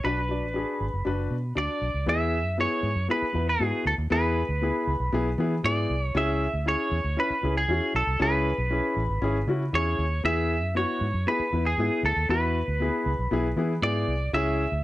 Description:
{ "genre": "uptempo 1960s-style soul", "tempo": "117 BPM", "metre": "4/4", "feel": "straight", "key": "unclear", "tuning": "A4 = 439 Hz", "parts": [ { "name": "clean electric guitar", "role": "melody", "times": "0.0-14.8 s", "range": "G#4 to E5", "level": "-28 LUFS", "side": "right 1 dB", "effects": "none" }, { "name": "warm upright piano", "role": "accompaniment", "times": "0.0-14.6 s", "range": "B3 to D5", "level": "-28 LUFS", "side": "left 3 dB", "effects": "plate reverb" }, { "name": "vintage muted fingered electric bass", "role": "bass", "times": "0.0-14.8 s", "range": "F#1 to E3", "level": "-28 LUFS", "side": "equal", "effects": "none" } ], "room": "moderate studio reverb, RT60 0.5 s", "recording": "none", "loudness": "-23 LUFS", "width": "side -16 dB against mid", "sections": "0.0-2.1 A section; 2.1-14.8 B section", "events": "none", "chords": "0.0 Bm; 2.1 E; 6.2 C#m; 10.2 E" }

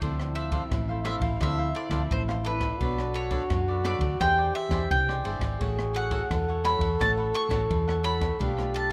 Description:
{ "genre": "samba and choro", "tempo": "86 BPM", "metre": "4/4", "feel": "straight", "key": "unclear", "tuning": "A4 = 440 Hz", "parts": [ { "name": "breathy trombone", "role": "second line", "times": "0.0-8.9 s", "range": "E4 to A4", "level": "-34 LUFS", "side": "equal", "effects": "none" }, { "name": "cavaquinho", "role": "accompaniment", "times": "0.0-8.9 s", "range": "D4 to F#5", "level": "-39 LUFS", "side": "equal", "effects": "plate reverb" }, { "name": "nylon-string guitar", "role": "accompaniment", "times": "0.0-8.9 s", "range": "A2 to C#5", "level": "-41 LUFS", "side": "equal", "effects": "none" }, { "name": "hollow-body short-scale fingered electric bass", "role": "bass", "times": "0.0-8.9 s", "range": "G1 to F#2", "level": "-32 LUFS", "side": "equal", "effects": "none" }, { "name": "open jazz drum kit", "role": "drums", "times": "0.0-8.9 s", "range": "kick drum, ride cymbal, rim click", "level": "-35 LUFS", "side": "equal", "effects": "none" }, { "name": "bowl-back mandolin", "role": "melody", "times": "0.4-8.9 s", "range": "B4 to C#6", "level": "-33 LUFS", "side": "equal", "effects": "tape echo" } ], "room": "light reverb", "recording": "rough home demo mix", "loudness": "-27 LUFS", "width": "mono", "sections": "0.0-8.9 A section", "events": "none", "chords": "0.0 Dm9; 2.8 Bm9; 4.2 E7alt; 5.6 A6; 8.4 Bm7b5" }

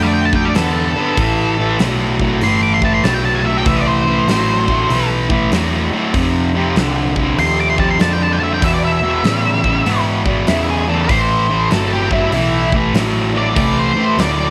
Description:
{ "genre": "blues rock power trio and southern rock", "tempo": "97 BPM", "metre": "4/4", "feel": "swing 64% on 8ths", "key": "A minor", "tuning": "A4 = 440 Hz", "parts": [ { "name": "octave-fuzz lead guitar", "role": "melody", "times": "0.0-14.5 s", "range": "E4 to D6", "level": "-21 LUFS", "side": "equal", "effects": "distortion" }, { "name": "fuzz guitar", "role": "riff", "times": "0.0-14.5 s", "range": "E2 to B3", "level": "-19 LUFS", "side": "equal", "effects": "distortion" }, { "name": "hollow-body short-scale picked electric bass", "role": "bass", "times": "0.0-14.5 s", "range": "G1 to A2", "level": "-22 LUFS", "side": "equal", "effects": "none" }, { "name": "huge arena drum kit", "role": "drums", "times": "0.3-14.4 s", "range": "hi-hat, kick drum, snare drum", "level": "-24 LUFS", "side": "equal", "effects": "none" } ], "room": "studio ambience", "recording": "none", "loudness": "-15 LUFS", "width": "mono", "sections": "0.0-14.5 A section", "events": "lead electric guitar solo 0.0-14.5", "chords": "0.0 Dmadd9; 1.2 Am9; 6.1 F5; 8.6 E; 11.1 Am9" }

